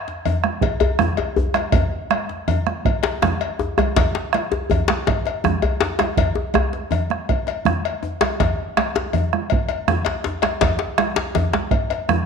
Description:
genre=west african traditional, West African drum ensemble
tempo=108 BPM (dotted quarters)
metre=12/8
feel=straight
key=none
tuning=none
part: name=djembe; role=percussion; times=0.1-12.3 s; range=none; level=-26 LUFS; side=left 2 dB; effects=none
part: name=congas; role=percussion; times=0.3-12.3 s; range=none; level=-26 LUFS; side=right 9 dB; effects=none
part: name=cowbell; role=percussion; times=0.3-12.1 s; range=none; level=-26 LUFS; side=left 9 dB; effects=none
part: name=bombo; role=percussion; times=0.4-12.3 s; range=none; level=-23 LUFS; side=right 4 dB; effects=none
part: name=djembe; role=percussion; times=0.6-11.7 s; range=none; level=-22 LUFS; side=left 4 dB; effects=none
room=wet echo chamber reverb, RT60 1.4 s, small room ambience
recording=1960s-style stereo with parts hard left and right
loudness=-18 LUFS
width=side -6 dB against mid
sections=0.0-12.3 A section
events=none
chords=none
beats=0.07 0.63 1.18 | 1.74 2.29 2.85 3.40 | 3.96 4.51 5.07 5.62 | 6.18 6.73 7.29 7.84 | 8.40 8.95 9.51 10.06 | 10.61 11.17 11.72

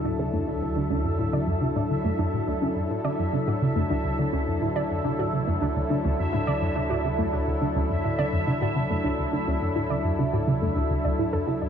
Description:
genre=ambient, sequencer-driven space music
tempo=105 BPM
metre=4/4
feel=straight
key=D major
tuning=A4 = 440 Hz
part: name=sweeping resonant pad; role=sustained chords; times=0.0-11.7 s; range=F#3 to A4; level=-28 LUFS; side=left 2 dB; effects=chorus, shimmer reverb
part: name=warbly dusty pluck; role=arpeggios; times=0.0-11.7 s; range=A3 to D5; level=-31 LUFS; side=moving between left 3 dB and right 5 dB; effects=chorus, auto-pan, tape echo, shimmer reverb
part: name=resonant blip pluck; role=riff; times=0.0-11.7 s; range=D2 to D3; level=-27 LUFS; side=equal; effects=phaser, tape echo
part: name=analog drone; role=bass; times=0.0-11.7 s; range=D2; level=-35 LUFS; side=equal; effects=chorus, phaser
part: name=bubbling stepped-filter texture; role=texture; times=0.0-11.7 s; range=E5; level=-34 LUFS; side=right 4 dB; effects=chorus, built-in reverb, shimmer reverb
room=moderate plate reverb, RT60 3.4 s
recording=dark, warm production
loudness=-23 LUFS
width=side -8 dB against mid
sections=0.0-11.7 A section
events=none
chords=0.0 Dadd9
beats=| 0.47 1.05 1.62 2.19 | 2.76 3.33 3.90 4.47 | 5.05 5.62 6.19 6.76 | 7.33 7.90 8.47 9.05 | 9.62 10.19 10.76 11.33

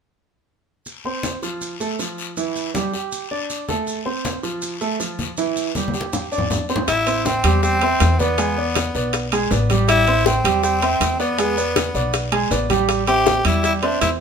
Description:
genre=latin, salsa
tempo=160 BPM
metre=4/4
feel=straight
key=A minor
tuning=A4 = 438 Hz
part: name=congas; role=percussion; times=0.9-14.2 s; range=none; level=-28 LUFS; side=left 2 dB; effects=none
part: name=guiro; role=percussion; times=0.9-14.2 s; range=none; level=-32 LUFS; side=left 7 dB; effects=none
part: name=maracas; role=percussion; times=0.9-14.2 s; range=none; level=-32 LUFS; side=right 3 dB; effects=none
part: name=clear grand piano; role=accompaniment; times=1.1-14.1 s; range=E3 to G#5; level=-22 LUFS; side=right 3 dB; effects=none
part: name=growling tenor saxophone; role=melody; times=6.9-14.1 s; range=B3 to G4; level=-20 LUFS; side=left 1 dB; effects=none
part: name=upright bass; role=bass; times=6.9-14.2 s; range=A1 to E2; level=-22 LUFS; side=left 1 dB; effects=none
part: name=bongos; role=percussion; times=6.9-14.2 s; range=none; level=-25 LUFS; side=left 8 dB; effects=none
part: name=timbales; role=percussion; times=6.9-14.2 s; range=none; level=-26 LUFS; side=right 7 dB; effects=none
room=moderate studio reverb, RT60 0.8 s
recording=minimal, uncompressed stereo recording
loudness=-18 LUFS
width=side -6 dB against mid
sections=0.9-6.9 A section; 6.9-14.2 B section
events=drum fill 5.8-6.9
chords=0.9 F5; 1.6 F; 2.4 Em; 3.1 Gsus2; 3.9 Am; 4.6 F; 5.4 Em; 6.1 G5; 6.9 Am7; 8.4 E7; 9.9 Am7; 11.4 E7; 12.9 Am7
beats=| 0.86 1.24 1.62 1.99 | 2.37 2.75 3.12 3.50 | 3.87 4.25 4.62 5.00 | 5.38 5.75 6.13 6.50 | 6.88 7.25 7.63 8.01 | 8.38 8.76 9.13 9.51 | 9.88 10.26 10.63 11.01 | 11.38 11.76 12.14 12.51 | 12.89 13.26 13.64 14.01

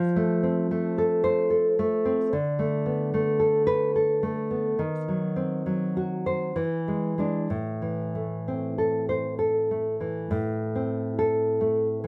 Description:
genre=romantic piece for solo classical guitar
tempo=61-75 BPM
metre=3/4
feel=rubato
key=A minor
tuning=A4 = 439 Hz
part: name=nylon-string guitar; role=solo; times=0.0-12.1 s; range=A2 to C5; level=-26 LUFS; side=equal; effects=none
room=little or no reverb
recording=close, detailed microphones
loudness=-26 LUFS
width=mono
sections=0.0-10.3 A section; 10.3-12.1 A section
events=none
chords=0.0 F; 2.3 Bm7/D; 4.8 D#m6; 6.6 E7; 7.5 Am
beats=0.70 1.50 | 2.32 3.14 3.96 | 4.81 5.68 6.57 | 7.50 8.48 9.40 | 10.31 11.18 12.02

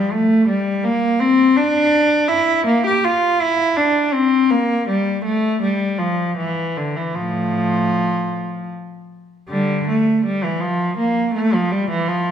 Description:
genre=classical, baroque-style suite movement for unaccompanied cello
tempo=75-83 BPM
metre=3/4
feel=rubato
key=unclear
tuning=A4 = 441 Hz
part: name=rich cello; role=solo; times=0.0-12.3 s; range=A2 to G4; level=-16 LUFS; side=equal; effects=none
room=wet recital hall reverb, RT60 1.6 s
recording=none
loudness=-16 LUFS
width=side -8 dB against mid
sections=0.0-9.5 A section; 9.5-12.3 A section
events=none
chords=none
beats=| 0.48 1.20 1.92 | 2.67 3.41 4.14 | 4.89 5.62 6.38 | 7.15 7.94 8.72 | 9.50 10.24 10.97 | 11.71

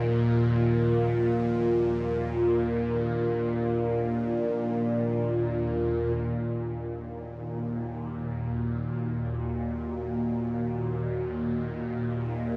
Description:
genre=dark ambient drone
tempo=free time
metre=none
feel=none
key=Eb harmonic minor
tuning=A4 = 440 Hz
part: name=deep dark ambient pad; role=sustained chords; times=0.0-12.6 s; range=F4 to Eb5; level=-32 LUFS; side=equal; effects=chorus, built-in reverb
part: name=bowed-like drone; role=drone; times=0.0-12.6 s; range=Eb2 to Bb2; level=-31 LUFS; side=equal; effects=built-in reverb, phaser
room=wet huge ambient reverb, RT60 7.5 s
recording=none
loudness=-28 LUFS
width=mono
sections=0.0-6.2 A section; 6.2-12.6 B section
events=fade-in on ambient pad 6.2-12.6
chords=0.0 Bb; 6.2 Ebm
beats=free time

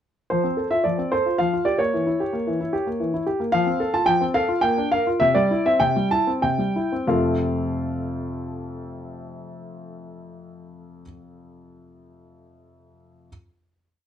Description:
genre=classical-period piano sonatina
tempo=89-113 BPM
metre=3/4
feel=straight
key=F major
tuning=A4 = 439 Hz
part: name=clear grand piano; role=solo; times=0.3-13.3 s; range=F2 to A5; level=-21 LUFS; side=equal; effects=none
room=light reverb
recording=dark, warm production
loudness=-20 LUFS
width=side -9 dB against mid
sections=0.3-7.1 theme; 7.1-11.1 final chord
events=slowing down 2.7-7.1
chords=0.3 F; 1.4 Gm7/F; 1.9 Edim7; 3.5 F; 4.6 Bb; 5.2 C; 7.1 F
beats=| 0.31 0.85 1.40 | 1.93 2.47 3.00 | 3.54 4.08 4.63 | 5.21 5.80 6.42 | 7.08 7.74 8.41 | 9.07 9.74 10.40

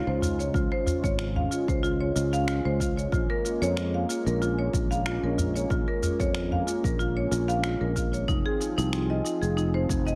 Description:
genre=organic downtempo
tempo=93 BPM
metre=4/4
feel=swing 53% on 16ths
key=unclear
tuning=A4 = 442 Hz
part: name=warm analog pad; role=sustained chords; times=0.0-10.2 s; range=Db3 to Ab4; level=-35 LUFS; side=equal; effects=lush chorus, sidechain pumping
part: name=marimba with hard mallets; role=arpeggios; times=0.0-10.2 s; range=Eb4 to F5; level=-32 LUFS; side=equal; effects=digital delay
part: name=sustaining fretless electric bass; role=bass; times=0.1-10.2 s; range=F1 to F2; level=-31 LUFS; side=equal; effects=sidechain pumping
part: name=electronic shaker and finger snaps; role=drums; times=0.2-10.2 s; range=none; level=-39 LUFS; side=equal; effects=overdrive, studio reverb
part: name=udu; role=percussion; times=0.2-1.5, 5.4-6.6 s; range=none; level=-33 LUFS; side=equal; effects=none
part: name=electronic kick drum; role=drums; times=0.5-10.0 s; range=none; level=-32 LUFS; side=equal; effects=overdrive, studio reverb
room=light reverb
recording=none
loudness=-27 LUFS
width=mono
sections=0.0-10.2 A section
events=none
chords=0.0 Dbmaj7; 3.1 Bbm7; 8.3 Fm7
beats=| 0.54 1.19 1.83 2.48 | 3.12 3.77 4.41 5.06 | 5.70 6.35 6.99 7.64 | 8.28 8.93 9.57

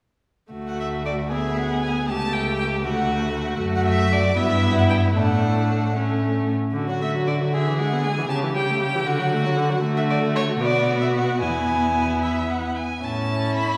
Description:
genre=quick classical-period movement for string quartet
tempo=77 BPM (dotted quarters)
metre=6/8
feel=rubato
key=D major, A major from 9.8 s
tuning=A4 = 439 Hz
part: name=warm violin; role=second line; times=0.5-13.8 s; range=C#4 to G#4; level=-29 LUFS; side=equal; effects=none
part: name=rich viola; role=accompaniment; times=0.5-13.8 s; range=C#3 to C#4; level=-29 LUFS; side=equal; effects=none
part: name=dark cello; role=bass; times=0.5-13.8 s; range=C#2 to D3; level=-26 LUFS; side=equal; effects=none
part: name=rich violin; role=melody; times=0.7-13.8 s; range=C#5 to B5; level=-28 LUFS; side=equal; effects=none
room=wet church reverb, RT60 2.9 s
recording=recorded in a church or concert hall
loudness=-22 LUFS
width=mono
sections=0.5-13.0 A section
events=none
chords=0.5 D; 1.3 E9/D; 2.1 A7/C#; 2.8 D; 3.6 F#m7; 4.4 Em/G; 5.2 D/A; 6.8 D; 7.5 E7/D; 8.3 A7/C#; 9.1 D; 10.6 Bm; 11.4 E; 13.0 A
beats=| 0.53 1.32 | 2.09 2.85 | 3.61 4.38 | 5.17 5.97 | 6.75 7.53 | 8.30 9.06 | 9.82 10.60 | 11.41 12.22 | 13.03

